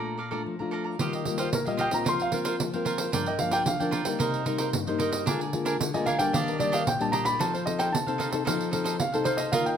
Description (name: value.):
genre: samba and choro.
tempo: 112 BPM.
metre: 4/4.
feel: straight.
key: Bb major.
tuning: A4 = 440 Hz.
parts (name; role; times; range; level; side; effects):
warm concert grand piano; melody; 0.0-9.8 s; A4 to C6; -28 LUFS; equal; none.
cavaquinho; accompaniment; 0.0-9.8 s; D4 to Bb5; -32 LUFS; right 5 dB; none.
nylon-string guitar; accompaniment; 0.0-9.8 s; G2 to Bb4; -30 LUFS; left 5 dB; none.
pandeiro; percussion; 1.0-9.8 s; none; -30 LUFS; right 4 dB; none.
room: moderate large studio reverb, RT60 0.9 s.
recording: none.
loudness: -24 LUFS.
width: side -8 dB against mid.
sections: 1.0-9.8 A section.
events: break 0.0-1.0; grand piano solo 1.0-9.8.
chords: 0.0 Bbmaj7; 1.0 Ebadd9; 2.1 Bbsus2/F; 3.1 Gm7; 4.2 Cm7; 5.3 Bb7/D; 6.3 Ebmaj7; 7.4 F7.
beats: 0.46 | 1.00 1.53 2.07 2.60 | 3.13 3.67 4.20 4.74 | 5.27 5.80 6.34 6.87 | 7.40 7.93 8.47 9.00 | 9.53.